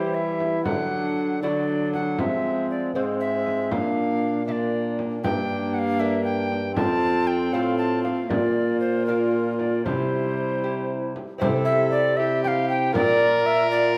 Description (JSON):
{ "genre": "classical, renaissance-style consort dance", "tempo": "78 BPM (dotted quarters)", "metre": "6/8", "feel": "straight", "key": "C mixolydian", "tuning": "A4 = 440 Hz", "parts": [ { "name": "mellow tenor recorder", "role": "melody", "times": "0.0-14.0 s", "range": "E4 to A5", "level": "-31 LUFS", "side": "equal", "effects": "none" }, { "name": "mellow tenor recorder", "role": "second line", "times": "0.0-14.0 s", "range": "C4 to G5", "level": "-28 LUFS", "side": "equal", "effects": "none" }, { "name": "lute", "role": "accompaniment", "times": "0.0-14.0 s", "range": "F2 to Bb4", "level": "-34 LUFS", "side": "equal", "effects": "none" }, { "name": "warm viola", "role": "accompaniment", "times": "0.0-14.0 s", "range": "F#3 to Bb4", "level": "-31 LUFS", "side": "equal", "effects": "none" }, { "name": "dark bassoon", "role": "bass", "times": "0.0-14.0 s", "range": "F2 to F3", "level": "-30 LUFS", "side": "equal", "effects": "none" }, { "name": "frame drum", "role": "percussion", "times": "0.4-13.2 s", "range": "none", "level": "-33 LUFS", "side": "equal", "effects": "none" } ], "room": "wet recital hall reverb, RT60 1.3 s", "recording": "none", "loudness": "-23 LUFS", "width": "mono", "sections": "0.0-11.4 A section; 11.4-14.0 B section", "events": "none", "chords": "0.0 C; 0.7 D; 2.2 Fm; 3.7 Bb; 5.2 Gm; 6.8 F; 8.3 Bb; 9.9 C; 12.9 Bb", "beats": "| 0.65 1.42 | 2.19 2.95 | 3.72 4.48 | 5.24 6.00 | 6.77 7.54 | 8.30 9.07 | 9.86 10.63 | 11.41 12.18 | 12.95 13.71" }